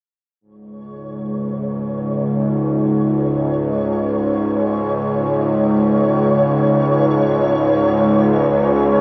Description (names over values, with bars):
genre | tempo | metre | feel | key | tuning
dark ambient drone | free time | none | none | unclear | A4 = 445 Hz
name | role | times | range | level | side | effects
bowed-like drone | drone | 1.0-9.0 s | C#2 to G#2 | -19 LUFS | equal | built-in reverb
flickering grainy texture | texture | 1.1-9.0 s | C#5 | -24 LUFS | equal | built-in reverb, subtle chorus
room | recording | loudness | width
wet huge ambient reverb, RT60 8.0 s | dreamy mix soaked in reverb, small speaker sound | -17 LUFS | mono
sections
0.4-9.0 A section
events
fade-in on synth texture 0.4-9.0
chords
0.4 C#5